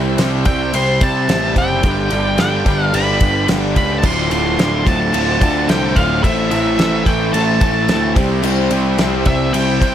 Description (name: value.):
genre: classic rock.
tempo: 109 BPM.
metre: 4/4.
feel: straight.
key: unclear.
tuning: A4 = 442 Hz.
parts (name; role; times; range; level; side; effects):
picked swing-style acoustic guitar; accompaniment; 0.0-9.9 s; A2 to C5; -26 LUFS; left 2 dB; none.
bright tonewheel organ; sustained chords; 0.0-9.9 s; B3 to E5; -29 LUFS; equal; none.
cranked stack guitar; riff; 0.0-9.9 s; D2 to C4; -20 LUFS; right 1 dB; overdrive.
fuzz picked electric bass; bass; 0.0-9.9 s; D1 to C3; -20 LUFS; equal; overdrive.
damped 70s drum kit; drums; 0.2-9.9 s; crash cymbal, kick drum, ride cymbal, snare drum; -19 LUFS; equal; none.
octave-fuzz lead guitar; melody; 0.5-9.9 s; E5 to C6; -20 LUFS; equal; distortion.
biting overdriven guitar; riff; 4.0-9.9 s; D2 to C4; -21 LUFS; equal; none.
room: light reverb, studio reverb.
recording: none.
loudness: -13 LUFS.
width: side -10 dB against mid.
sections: 0.0-9.9 A section.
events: none.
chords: 0.0 C; 1.8 G; 4.0 Dm7; 6.2 Am; 8.2 C.